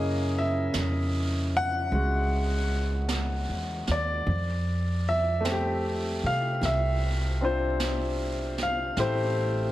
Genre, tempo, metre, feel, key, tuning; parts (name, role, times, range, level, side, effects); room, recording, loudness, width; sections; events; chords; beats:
jazz ballad; 51 BPM; 4/4; swing 67% on 8ths; A4 = 439 Hz
clear baby grand piano; accompaniment; 0.0-9.7 s; Db3 to Gb5; -28 LUFS; left 1 dB
upright bass; bass; 0.0-9.7 s; A1 to C3; -28 LUFS; equal
jazz brush drum kit; drums; 0.7-9.7 s; brushed snare drum, hi-hat, snare drum; -36 LUFS; right 3 dB
moderate large studio reverb, RT60 1.3 s; heavily compressed radio sound; -25 LUFS; side -15 dB against mid
0.0-9.7 A section
0.0 Gb9; 4.3 Fmaj9
0.74 1.92 3.09 | 4.26 5.44 6.61 7.79 | 8.96